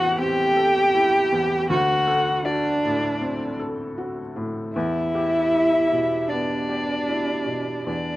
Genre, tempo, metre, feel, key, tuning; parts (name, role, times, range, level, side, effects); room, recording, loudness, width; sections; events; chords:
neoclassical piano and strings; 78 BPM; 4/4; rubato; A4 = 441 Hz
muted violin; melody; 0.0-8.2 s; D5 to G5; -24 LUFS; left 2 dB
muted cello; second line; 0.0-8.2 s; D4 to G4; -23 LUFS; right 2 dB; slapback echo
felt-muted upright piano; accompaniment; 0.0-8.2 s; A1 to A4; -27 LUFS; left 1 dB; slapback echo
little or no reverb; recorded outdoors, with no room sound; -20 LUFS; side -16 dB against mid
0.0-8.2 A section
0.0 Am7; 1.7 D7; 4.7 Em